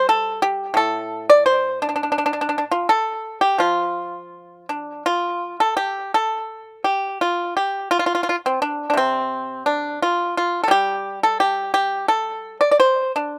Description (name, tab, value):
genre	chinese traditional, Chinese solo plucked strings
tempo	86 BPM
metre	4/4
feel	rubato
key	C zhi mode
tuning	A4 = 440 Hz
part	pipa	solo	0.0-13.4 s	A2 to D5	-20 LUFS	equal	none
room	little or no reverb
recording	recorded outdoors, with no room sound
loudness	-20 LUFS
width	mono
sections	0.0-13.4 A section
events	none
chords	none